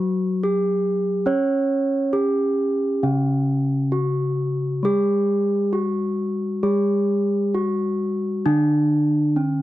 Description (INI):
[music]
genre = gamelan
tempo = 66 BPM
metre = 4/4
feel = straight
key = unclear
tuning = A4 = 435 Hz
[part]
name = gamelan-type bronze metallophone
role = melody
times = 0.0-9.6 s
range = C#4 to C#5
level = -21 LUFS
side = right 1 dB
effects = none
[part]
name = gamelan-type bronze metallophone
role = accompaniment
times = 0.0-9.6 s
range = C#3 to C#4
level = -23 LUFS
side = left 2 dB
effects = none
[sound]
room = little or no reverb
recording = dry, close 1970s-style studio recording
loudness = -19 LUFS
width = side -15 dB against mid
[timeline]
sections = 0.0-3.0 A section; 3.0-9.6 B section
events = none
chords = none